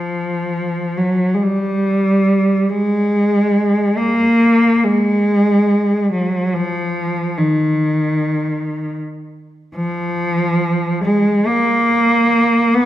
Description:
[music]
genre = classical, free, expressive piece for unaccompanied cello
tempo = free time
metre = none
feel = none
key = unclear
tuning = A4 = 437 Hz
[part]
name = rich cello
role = solo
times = 0.0-12.9 s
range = Eb3 to Cb4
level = -14 LUFS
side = equal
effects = none
[sound]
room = wet recital hall reverb, RT60 1.6 s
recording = none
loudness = -14 LUFS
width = side -13 dB against mid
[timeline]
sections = 0.0-12.9 A section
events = none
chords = none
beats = free time

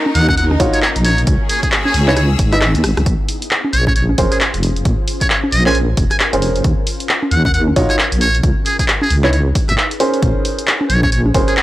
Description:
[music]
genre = UK garage, two-step garage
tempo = 134 BPM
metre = 4/4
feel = swing 60% on 16ths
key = Bb minor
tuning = A4 = 439 Hz
[part]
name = ethereal airy pad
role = sustained chords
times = 0.0-11.6 s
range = Bb3 to C5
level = -29 LUFS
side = left 2 dB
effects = ensemble chorus, built-in reverb, sidechain pumping
[part]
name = bright studio string section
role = texture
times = 0.0-3.1 s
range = Db4 to Fb6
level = -23 LUFS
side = left 1 dB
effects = sidechain pumping
[part]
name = trumpet with metal mute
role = melody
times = 0.1-11.6 s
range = Ab4 to Ab5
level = -19 LUFS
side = equal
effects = none
[part]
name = punchy analog drum machine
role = drums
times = 0.1-11.6 s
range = congas, handclaps, hi-hat, rim click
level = -18 LUFS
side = equal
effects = studio reverb
[part]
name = deep soft wobble bass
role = bass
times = 0.2-11.5 s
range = F1 to Fb2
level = -15 LUFS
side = equal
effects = chorus, sidechain pumping
[part]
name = electronic kick drum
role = drums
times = 0.3-11.5 s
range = none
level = -18 LUFS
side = equal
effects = studio reverb
[part]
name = dark grand piano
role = stabs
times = 0.6-11.5 s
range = Db4 to Eb5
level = -18 LUFS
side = right 1 dB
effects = analog delay
[sound]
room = small room ambience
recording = dry, gritty hardware recording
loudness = -12 LUFS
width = side -16 dB against mid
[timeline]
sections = 0.0-3.1 A section; 3.1-11.6 A section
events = drop 0.0-3.1, 3.1-11.6; drum fill 2.2-3.1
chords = 0.0 Ebm9; 1.3 Dbm9; 3.1 Bbm9; 6.6 Ebm9; 8.4 Dbm9; 10.2 Bbm9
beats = 0.38 0.82 | 1.27 1.72 2.17 2.61 | 3.06 3.51 3.96 4.40 | 4.85 5.30 5.75 6.20 | 6.64 7.09 7.54 7.99 | 8.43 8.88 9.33 9.78 | 10.22 10.67 11.12 11.57

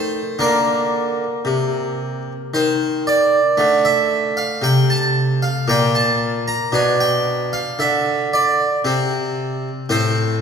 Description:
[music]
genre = classical, baroque-style suite movement for harpsichord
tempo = 57 BPM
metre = 3/4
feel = rubato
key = Bb major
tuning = A4 = 440 Hz
[part]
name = harpsichord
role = solo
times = 0.0-10.4 s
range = A2 to Bb5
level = -16 LUFS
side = right 1 dB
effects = none
[sound]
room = wet church reverb, RT60 2.7 s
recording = recorded in a church or concert hall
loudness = -16 LUFS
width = side -6 dB against mid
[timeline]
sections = 0.0-10.4 A section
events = none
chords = 0.4 Bb; 3.6 D5; 5.7 N.C.; 6.7 Bmadd11; 8.9 N.C.; 9.9 Am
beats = | 0.39 1.45 2.54 | 3.59 4.63 5.68 | 6.73 7.80 8.86 | 9.89

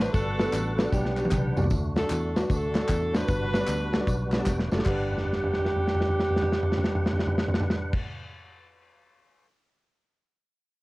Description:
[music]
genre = uptempo gospel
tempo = 153 BPM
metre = 4/4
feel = swing 65% on 8ths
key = G major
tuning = A4 = 440 Hz
[part]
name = warm saxophone section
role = melody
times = 0.0-7.9 s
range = B3 to B4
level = -30 LUFS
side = right 1 dB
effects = none
[part]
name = warm upright piano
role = accompaniment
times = 0.0-8.0 s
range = G2 to F#5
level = -35 LUFS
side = equal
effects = none
[part]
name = tonewheel organ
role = sustained chords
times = 0.0-7.9 s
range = G3 to A5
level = -35 LUFS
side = right 1 dB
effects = fast rotary speaker, chorus vibrato
[part]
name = fingered electric bass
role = bass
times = 0.0-7.9 s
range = E1 to E2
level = -30 LUFS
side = equal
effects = none
[part]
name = modern studio drum kit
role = drums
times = 0.0-9.5 s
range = crash cymbal, hi-hat, kick drum, snare drum, toms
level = -27 LUFS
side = equal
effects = cassette tape
[part]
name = tambourine and handclaps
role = percussion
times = 0.0-7.9 s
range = none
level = -42 LUFS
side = left 1 dB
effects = none
[sound]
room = small room ambience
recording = home recording on cassette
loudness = -24 LUFS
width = side -21 dB against mid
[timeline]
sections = 0.0-1.7 A section; 1.7-4.9 B section; 4.9-8.0 C section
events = drum fill 0.9-1.7, 4.5-4.9, 5.1-7.9; tonewheel organ fill 4.1-4.9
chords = 0.1 Gmaj7; 1.7 D; 3.3 Gmaj7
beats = | 0.14 0.53 0.93 1.32 | 1.71 2.11 2.50 2.89 | 3.29 3.68 4.07 4.46 | 4.86 5.25 5.64 6.04 | 6.43 6.82 7.21 7.61

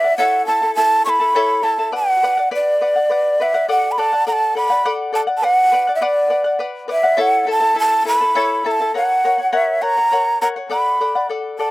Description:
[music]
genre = andean folk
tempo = 68 BPM (dotted quarters)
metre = 6/8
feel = straight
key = B minor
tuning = A4 = 440 Hz
[part]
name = breathy large quena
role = melody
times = 0.0-11.7 s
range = D5 to C#6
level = -15 LUFS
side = right 1 dB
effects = none
[part]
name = charango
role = accompaniment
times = 0.0-11.7 s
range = E4 to A5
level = -22 LUFS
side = left 3 dB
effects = slapback echo
[sound]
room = little or no reverb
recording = recorded outdoors, with no room sound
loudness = -14 LUFS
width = side -18 dB against mid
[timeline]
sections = 0.0-3.7 A section; 3.7-11.7 A section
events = none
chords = 0.2 A; 1.9 Bm; 3.7 D; 5.4 Bm; 7.2 A; 8.9 F#; 10.7 D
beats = | 0.17 1.05 | 1.93 2.81 | 3.69 4.57 | 5.44 6.32 | 7.20 8.07 | 8.95 9.83 | 10.70 11.58

